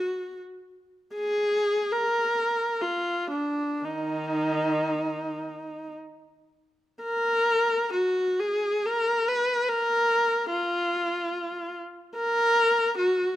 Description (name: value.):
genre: classical, free, expressive piece for unaccompanied viola.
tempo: 45-79 BPM.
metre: 3/4.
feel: rubato.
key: Eb minor.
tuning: A4 = 440 Hz.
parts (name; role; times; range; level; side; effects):
rich viola; solo; 0.0-13.4 s; Eb3 to Cb5; -24 LUFS; equal; none.
room: light reverb.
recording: close, detailed microphones.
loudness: -23 LUFS.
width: side -14 dB against mid.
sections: 0.0-7.0 A section; 7.0-13.4 B section.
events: none.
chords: none.